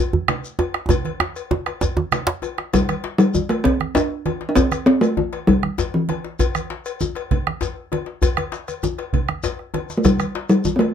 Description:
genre	west african traditional, West African drum ensemble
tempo	131 BPM (dotted quarters)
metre	12/8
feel	straight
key	unclear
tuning	A4 = 440 Hz
part	congas	percussion	0.1-10.8 s	none	-27 LUFS	right 8 dB	none
part	djembe	percussion	0.1-2.4 s	none	-21 LUFS	right 3 dB	none
part	bombo	percussion	0.3-10.9 s	none	-22 LUFS	right 2 dB	none
part	cowbell	percussion	0.3-10.9 s	none	-30 LUFS	left 9 dB	none
part	djembe	percussion	0.3-10.9 s	none	-27 LUFS	left 7 dB	none
part	shekere	percussion	0.4-10.8 s	none	-30 LUFS	left 4 dB	none
part	talking drum	melody	2.7-6.3, 10.0-10.9 s	E3 to D4	-17 LUFS	equal	none
room	light reverb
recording	none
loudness	-18 LUFS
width	side -8 dB against mid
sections	0.0-2.7 A section; 2.7-10.9 B section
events	drum fill 0.9-2.7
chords	none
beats	0.44 | 0.90 1.36 1.82 2.28 | 2.74 3.19 3.65 4.11 | 4.57 5.03 5.48 5.94 | 6.40 6.85 7.31 7.77 | 8.22 8.68 9.13 9.59 | 10.04 10.50

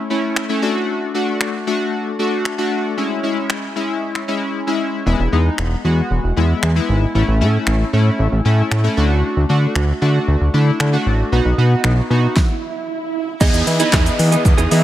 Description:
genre	dance-pop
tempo	115 BPM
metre	4/4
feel	straight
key	E major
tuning	A4 = 436 Hz
part	chorused retro synth keys	accompaniment	0.0-14.8 s	G#3 to B4	-19 LUFS	left 1 dB	none
part	deep house drum kit	drums	0.4-14.8 s	crash cymbal, finger snaps, handclaps, hi-hat, kick drum, shaker, snare drum	-20 LUFS	equal	none
part	fat analog bass	bass	5.1-14.8 s	E1 to E3	-15 LUFS	equal	sidechain pumping
part	swell and downlifter	sound effects	11.9-14.8 s	none	-25 LUFS	right 4 dB	none
part	mellow brass ensemble	sustained chords	13.4-14.8 s	E3 to D#5	-24 LUFS	left 1 dB	sidechain pumping
part	glassy wavetable pluck	arpeggios	13.4-14.8 s	D#5 to D#6	-24 LUFS	right 3 dB	chorus, sidechain pumping, tape echo
part	direct-recorded clean electric guitar	riff	13.4-14.8 s	B3 to G#4	-23 LUFS	right 6 dB	lush chorus
part	tambourine	percussion	13.9-14.1 s	none	barely audible	none	none
room	light reverb, digital ambience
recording	none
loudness	-15 LUFS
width	side -13 dB against mid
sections	0.0-13.4 A section; 13.4-14.8 B section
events	silent gap 4.5-5.1; swell 11.9-13.4; stop 12.4-13.4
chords	0.0 A; 0.6 D; 3.0 C#m; 5.1 E; 7.1 A; 9.0 D; 11.3 B; 13.4 Emaj7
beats	0.37 | 0.89 1.41 1.93 2.45 | 2.98 3.50 4.02 4.54 | 5.06 5.58 6.11 6.63 | 7.15 7.67 8.19 8.71 | 9.24 9.76 10.28 10.80 | 11.32 11.84 12.37 12.89 | 13.41 13.93 14.45

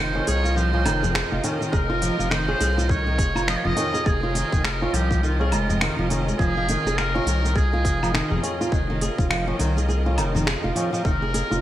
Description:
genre	organic downtempo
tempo	103 BPM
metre	4/4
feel	swing 59% on 16ths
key	F minor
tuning	A4 = 437 Hz
part	trumpet with metal mute	melody	0.0-11.6 s	F4 to Eb5	-28 LUFS	right 1 dB	digital delay
part	bright studio string section	sustained chords	0.0-11.6 s	C3 to G5	-31 LUFS	right 1 dB	sidechain pumping
part	flamenco guitar	arpeggios	0.0-11.6 s	Eb3 to Ab4	-26 LUFS	right 1 dB	digital delay
part	round analog bass	bass	0.0-11.6 s	F1 to C2	-24 LUFS	equal	none
part	tabla	percussion	0.2-11.6 s	none	-32 LUFS	left 3 dB	none
part	organic electronic drum kit	drums	0.3-11.6 s	cabasa, finger snaps, hi-hat, woodblock	-28 LUFS	equal	gated reverb
part	electronic kick drum	drums	1.7-11.2 s	none	-23 LUFS	equal	none
room	light reverb, studio ambience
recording	bright 1980s-style digital production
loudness	-20 LUFS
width	side -13 dB against mid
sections	0.0-11.6 A section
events	none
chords	0.0 Fm7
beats	0.57 1.15 | 1.73 2.31 2.90 3.48 | 4.06 4.64 5.23 5.81 | 6.39 6.97 7.56 8.14 | 8.72 9.30 9.89 10.47 | 11.05

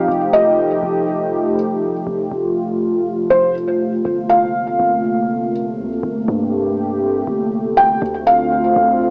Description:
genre	hip hop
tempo	121 BPM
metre	4/4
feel	half-time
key	unclear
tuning	A4 = 441 Hz
part	felt-muted upright piano	melody	0.0-9.1 s	C5 to G5	-15 LUFS	equal	tape echo
part	dark analog pad	sustained chords	0.0-9.1 s	C3 to G4	-18 LUFS	equal	chorus, cassette tape
part	long sustained 808-style bass	bass	0.0-9.1 s	F1 to G2	-28 LUFS	equal	none
room	light reverb, studio reverb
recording	home recording on cassette, small speaker sound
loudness	-14 LUFS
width	side -40 dB against mid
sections	0.0-9.1 A section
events	none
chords	0.1 F9; 4.1 Gm11; 8.0 Dm7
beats	| 0.08 0.58 1.08 1.57 | 2.07 2.56 3.06 3.56 | 4.05 4.55 5.04 5.54 | 6.04 6.53 7.03 7.52 | 8.02 8.51 9.01

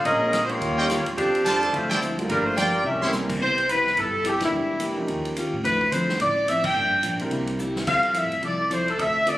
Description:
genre	jazz, big band swing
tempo	215 BPM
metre	4/4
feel	swing 60% on 8ths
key	C major from 3.4 s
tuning	A4 = 437 Hz
part	warm saxophone section	melody	0.0-9.4 s	F3 to G5	-22 LUFS	equal	none
part	upright bass	bass	0.0-9.4 s	E1 to A2	-33 LUFS	equal	none
part	picked plugged-in steel-string acoustic guitar	accompaniment	0.1-9.4 s	G2 to A4	-31 LUFS	left 1 dB	none
part	swinging big-band drum kit	drums	0.1-9.3 s	crash cymbal, hi-hat, kick drum, ride cymbal, snare drum	-31 LUFS	equal	none
part	clear concert grand piano	accompaniment	0.2-8.6 s	F3 to Bb4	-31 LUFS	right 1 dB	none
part	bright trumpet section	stabs	0.8-3.1 s	E4 to C6	-25 LUFS	right 1 dB	none
room	moderate large studio reverb, RT60 1.2 s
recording	recorded on a phone in the room, club reverb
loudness	-21 LUFS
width	side -15 dB against mid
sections	0.0-3.4 A section; 3.4-9.4 B section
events	band accent 1.9, 4.4, 6.6; drum fill 2.8, 7.6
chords	0.1 Bbm7; 0.6 Eb9; 1.2 F6; 1.7 Dm9; 2.3 Gm7; 2.8 C7b9; 3.4 Cmaj7; 4.5 Em7b5; 5.1 Eb9; 5.6 Dm9; 6.8 Gm7; 7.3 C7; 7.9 Fmaj7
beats	| 0.06 0.34 0.62 0.90 | 1.17 1.45 1.73 2.01 | 2.29 2.57 2.85 3.13 | 3.41 3.69 3.97 4.25 | 4.53 4.80 5.08 5.36 | 5.64 5.92 6.20 6.48 | 6.76 7.04 7.32 7.60 | 7.88 8.16 8.44 8.71 | 8.99 9.27

